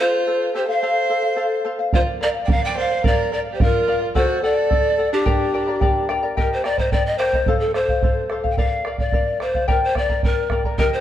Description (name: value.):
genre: andean folk, Andean ensemble.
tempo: 108 BPM.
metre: 2/4.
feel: straight.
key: G minor.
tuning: A4 = 439 Hz.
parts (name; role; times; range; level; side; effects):
breathy mellow pan flute; melody; 0.0-11.0 s; G4 to G5; -21 LUFS; left 1 dB; none.
warm violin; second line; 0.0-6.1 s; D4 to D5; -26 LUFS; right 5 dB; none.
charango; accompaniment; 0.0-11.0 s; G4 to Bb5; -24 LUFS; left 3 dB; none.
bombo; percussion; 1.9-10.9 s; none; -21 LUFS; right 1 dB; none.
room: moderate recital hall reverb, RT60 1.6 s.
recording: dark, warm production.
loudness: -17 LUFS.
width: side -11 dB against mid.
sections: 0.0-6.4 A section; 6.4-11.0 B section.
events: none.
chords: 0.0 F; 1.9 Bb; 4.2 D; 5.3 Gm; 6.4 Eb; 7.5 F; 8.6 Bb; 9.7 Gm.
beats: 0.26 | 0.82 1.38 | 1.93 2.49 | 3.04 3.60 | 4.16 4.71 | 5.26 5.82 | 6.37 6.92 | 7.48 8.03 | 8.58 9.13 | 9.68 10.23 | 10.78.